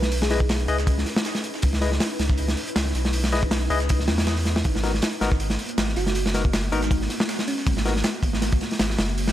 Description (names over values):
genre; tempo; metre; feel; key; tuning
drum and bass, jungle; 159 BPM; 4/4; swing 54% on 16ths; C# minor; A4 = 440 Hz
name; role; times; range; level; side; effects
thumb-piano-like synth pluck; melody; 0.0-0.7, 6.0-7.8 s; C#4 to B4; -32 LUFS; right 1 dB; chorus, dub echo
ethereal airy pad; sustained chords; 0.0-9.3 s; G#3 to B4; -32 LUFS; equal; ensemble chorus, built-in reverb
saturated sub bass; bass; 0.0-9.3 s; F#1 to E2; -25 LUFS; equal; none
breakbeat sampler-style drum kit; drums; 0.0-9.3 s; hi-hat, snare drum; -36 LUFS; right 2 dB; overdrive, high-pass filter on hats, high-pass filter on snare, high-pass filter on room
crunchy breakbeat drum kit; drums; 0.0-9.3 s; hi-hat, kick drum, snare drum; -24 LUFS; equal; none
barky tine electric piano; stabs; 0.3-7.9 s; B3 to D#5; -30 LUFS; left 4 dB; dub echo
room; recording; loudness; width
small room ambience; none; -21 LUFS; side -12 dB against mid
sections
0.0-9.3 A section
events
none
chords
0.0 C#m9; 4.6 G#m9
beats
| 0.12 0.50 0.87 1.25 | 1.63 2.00 2.38 2.76 | 3.14 3.52 3.89 4.27 | 4.65 5.02 5.40 5.78 | 6.16 6.53 6.91 7.29 | 7.67 8.04 8.42 8.80 | 9.18